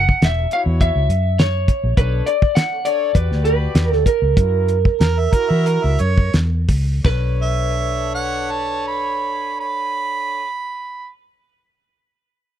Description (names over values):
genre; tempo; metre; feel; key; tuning
straight-eighth soul blues; 82-103 BPM; 4/4; swing 53% on 16ths; B minor; A4 = 440 Hz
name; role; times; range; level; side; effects
electric slide guitar; melody; 0.0-10.5 s; A#4 to F#5; -21 LUFS; right 2 dB; none
vintage muted fingered electric bass; bass; 0.0-10.5 s; E1 to E3; -18 LUFS; equal; none
cloth-damped thuddy drum kit; drums; 0.1-7.2 s; hi-hat, kick drum, snare drum, splash cymbal, toms; -16 LUFS; equal; none
bright horn section; sustained chords; 0.4-10.5 s; D4 to D5; -29 LUFS; left 2 dB; none
clear harmonica; second line; 5.0-11.1 s; A#4 to B5; -23 LUFS; right 4 dB; overdrive
room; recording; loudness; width
little or no reverb; dry, close 1970s-style studio recording; -16 LUFS; side -10 dB against mid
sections
0.0-7.0 A section; 7.0-10.0 B section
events
slowing down 2.0-7.0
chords
0.0 F#7(no3); 2.0 Bm9; 3.1 Em9; 4.4 F#7; 7.0 Bm9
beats
0.22 0.80 1.39 | 1.97 2.55 3.15 3.75 | 4.36 5.00 5.65 6.33 | 7.04 7.77 8.50 9.23